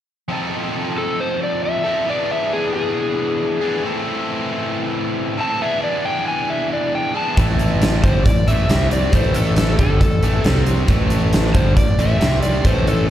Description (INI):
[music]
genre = blues rock power trio and southern rock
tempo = 136 BPM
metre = 4/4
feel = straight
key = A minor from 7.4 s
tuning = A4 = 440 Hz
[part]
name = overdriven electric guitar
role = riff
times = 0.3-13.1 s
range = G2 to A4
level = -22 LUFS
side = equal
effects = slapback echo
[part]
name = overdriven slide guitar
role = melody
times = 1.0-13.1 s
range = G#4 to A5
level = -22 LUFS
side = left 2 dB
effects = slapback echo, analog delay
[part]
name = fuzz fingered electric bass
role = bass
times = 7.4-13.1 s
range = G1 to C2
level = -18 LUFS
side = equal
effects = overdrive
[part]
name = huge arena drum kit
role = drums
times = 7.4-13.0 s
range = hi-hat, kick drum, snare drum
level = -18 LUFS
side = equal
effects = none
[sound]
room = little or no reverb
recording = live gig heard through the venue's PA, recital hall reverb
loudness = -16 LUFS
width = side -12 dB against mid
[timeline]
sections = 0.3-7.4 A section; 7.4-13.1 B section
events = none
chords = 0.3 F7; 2.1 E7; 3.8 Am; 5.6 E7; 7.4 A5; 8.7 C5; 9.1 A5; 10.5 C5; 10.9 A5; 12.2 C5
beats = | 0.30 0.75 1.19 1.63 | 2.08 2.52 2.96 3.40 | 3.84 4.29 4.73 5.17 | 5.61 6.05 6.49 6.93 | 7.37 7.81 8.26 8.70 | 9.13 9.57 10.02 10.46 | 10.89 11.33 11.77 12.21 | 12.65 13.09